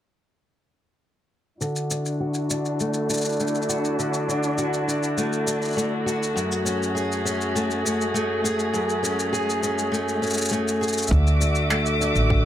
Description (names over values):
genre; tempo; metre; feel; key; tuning
folktronica; 101 BPM; 4/4; straight; D lydian; A4 = 440 Hz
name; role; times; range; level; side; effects
dark string quartet; sustained chords; 1.6-12.4 s; A3 to D6; -27 LUFS; equal; low-pass filter, plate reverb
picked steel-string acoustic guitar; arpeggios; 1.6-12.4 s; F#2 to G#4; -24 LUFS; equal; low-pass filter, ping-pong delay, plate reverb
shaker and finger snaps; drums; 1.6-12.3 s; none; -29 LUFS; left 1 dB; none
upright bass; bass; 11.1-12.4 s; A1 to D2; -21 LUFS; equal; none
electronic kick drum; drums; 11.1-12.4 s; none; -22 LUFS; equal; none
room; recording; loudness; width
moderate small room reverb, RT60 0.6 s; none; -21 LUFS; side -11 dB against mid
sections
1.6-11.1 A section; 11.1-12.4 B section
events
filter sweep on steel-string acoustic guitar 1.6-11.1, 11.1-12.4; filter sweep on string quartet 1.6-11.1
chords
1.6 Dadd9; 6.4 F#madd9; 11.1 Dadd9